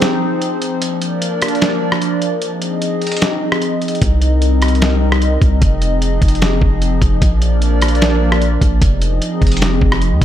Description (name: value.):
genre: hip hop, atmospheric cloud-rap.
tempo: 150 BPM.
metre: 4/4.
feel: half-time.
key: unclear.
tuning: A4 = 437 Hz.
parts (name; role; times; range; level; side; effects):
hollow soft pad; sustained chords; 0.0-10.2 s; F3 to Eb5; -18 LUFS; left 1 dB; chorus, sidechain pumping.
dusty soul sampler-style drum kit; drums; 0.0-10.2 s; hi-hat, kick drum, rim click, snare drum; -17 LUFS; equal; none.
long sustained 808-style bass; bass; 4.0-10.2 s; F1 to F2; -14 LUFS; equal; none.
room: little or no reverb.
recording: none.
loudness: -13 LUFS.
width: side -11 dB against mid.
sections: 0.0-10.2 A section.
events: break 0.0-4.0.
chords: 0.0 Fm7; 0.8 Bb; 2.4 Fm7; 4.0 Cm7; 5.6 Fm7; 7.2 Bb; 8.8 Fm7.